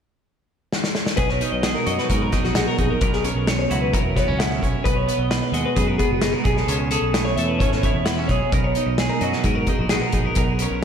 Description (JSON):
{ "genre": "math rock and midwest emo", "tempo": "131 BPM", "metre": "4/4", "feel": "straight", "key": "B major", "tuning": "A4 = 440 Hz", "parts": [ { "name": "loose indie drum kit", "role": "drums", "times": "0.7-10.7 s", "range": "hi-hat, kick drum, snare drum", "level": "-23 LUFS", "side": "equal", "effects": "none" }, { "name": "twelve-string electric guitar", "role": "accompaniment", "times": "1.2-10.8 s", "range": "B2 to C#5", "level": "-24 LUFS", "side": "right 6 dB", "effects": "slapback echo" }, { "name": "twelve-string electric guitar", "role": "arpeggios", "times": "1.2-10.8 s", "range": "F#4 to F#5", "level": "-24 LUFS", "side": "left 4 dB", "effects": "warbly pitch drift, slapback echo" }, { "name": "growling fingered electric bass", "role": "bass", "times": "1.2-10.8 s", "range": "E1 to G#2", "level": "-25 LUFS", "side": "equal", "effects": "overdrive" } ], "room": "moderate lush hall reverb, RT60 1.8 s, small room ambience", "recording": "big arena sound", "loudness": "-18 LUFS", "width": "side -8 dB against mid", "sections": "0.0-1.2 A section; 1.2-10.8 B section", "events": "drum fill 0.7-1.2", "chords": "0.0 N.C.; 1.2 Bmaj7; 3.0 F#7/B; 4.9 G#m7/B; 6.5 Amaj7/B; 8.5 Bmaj7" }